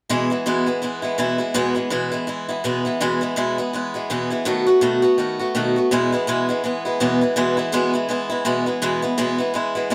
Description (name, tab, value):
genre	rock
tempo	165 BPM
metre	4/4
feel	swing 58% on 8ths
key	E major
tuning	A4 = 440 Hz
part	picked swing-style acoustic guitar	solo	0.1-9.9 s	E2 to F#4	-21 LUFS	equal	none
room	moderate studio ambience, RT60 0.5 s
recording	band playing live in one room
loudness	-21 LUFS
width	mono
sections	0.1-5.9 A section; 5.9-9.9 B section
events	none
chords	0.1 E; 4.5 B7; 5.9 E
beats	| 0.10 0.46 0.82 1.19 | 1.55 1.91 2.28 2.64 | 3.00 3.37 3.73 4.09 | 4.46 4.82 5.18 5.55 | 5.91 6.27 6.64 7.00 | 7.37 7.73 8.09 8.46 | 8.82 9.18 9.54 9.91